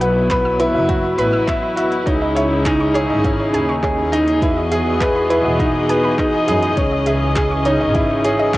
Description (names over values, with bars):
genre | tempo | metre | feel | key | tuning
piano and strings electronica | 102 BPM | 4/4 | straight | C# minor | A4 = 440 Hz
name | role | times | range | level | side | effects
warm chamber string section | sustained chords | 0.0-8.6 s | C#3 to D#5 | -20 LUFS | left 1 dB | sidechain pumping, cassette tape, shimmer reverb
soft round pluck | arpeggios | 0.0-8.6 s | B4 to E6 | -25 LUFS | right 2 dB | chorus, sidechain pumping, cassette tape, tape echo, shimmer reverb
bright baby grand piano | riff | 0.0-8.6 s | B3 to E5 | -18 LUFS | equal | cassette tape, tape echo, shimmer reverb
clear studio double bass section | bass | 0.0-8.2 s | E1 to F#2 | -23 LUFS | equal | sidechain pumping
deep house drum kit | drums | 0.0-8.6 s | handclaps, hi-hat | -29 LUFS | equal | cassette tape
electronic kick drum | drums | 0.3-8.6 s | none | -22 LUFS | equal | cassette tape
room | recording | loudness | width
moderate small room ambience, RT60 0.5 s | home recording on cassette | -14 LUFS | side -17 dB against mid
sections
0.0-8.6 A section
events
none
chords
0.0 Bsus4; 2.1 C#madd9; 4.4 Emaj7; 6.8 C#madd9